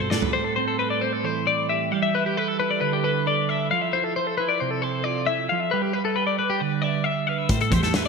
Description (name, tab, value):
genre	math rock and midwest emo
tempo	134 BPM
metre	4/4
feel	straight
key	unclear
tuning	A4 = 440 Hz
part	twelve-string electric guitar	accompaniment	0.0-8.1 s	A2 to G5	-26 LUFS	right 10 dB	analog chorus
part	twelve-string electric guitar	arpeggios	0.0-8.1 s	G4 to F5	-24 LUFS	left 7 dB	spring reverb
part	warm cello	bass	0.0-0.3, 7.5-8.1 s	E2 to A2	-26 LUFS	left 1 dB	none
part	loose indie drum kit	drums	0.1-0.3, 7.5-8.1 s	hi-hat, kick drum, snare drum, toms	-25 LUFS	equal	gated reverb
room	moderate lush hall reverb, RT60 1.8 s, studio reverb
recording	bright 1980s-style digital production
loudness	-21 LUFS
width	side -4 dB against mid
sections	0.3-8.1 A section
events	drum fill 0.0-0.3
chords	0.3 Am7; 1.9 G69; 3.7 Fmaj7; 5.7 G69; 7.5 Am9